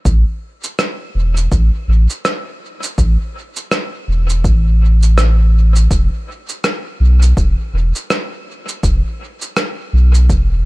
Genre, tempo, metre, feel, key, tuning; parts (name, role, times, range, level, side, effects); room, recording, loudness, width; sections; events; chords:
ambient dub; 82 BPM; 4/4; swing 59% on 16ths; A4 = 440 Hz
warm sub bass; bass; 0.1-10.7 s; E1 to B1; -11 LUFS; equal
electronic kick drum; drums; 0.1-10.5 s; -17 LUFS; equal
electronic shaker and rim click; drums; 0.1-10.5 s; -22 LUFS; right 1 dB; dub echo
little or no reverb; -12 LUFS; side -21 dB against mid
0.1-10.7 A section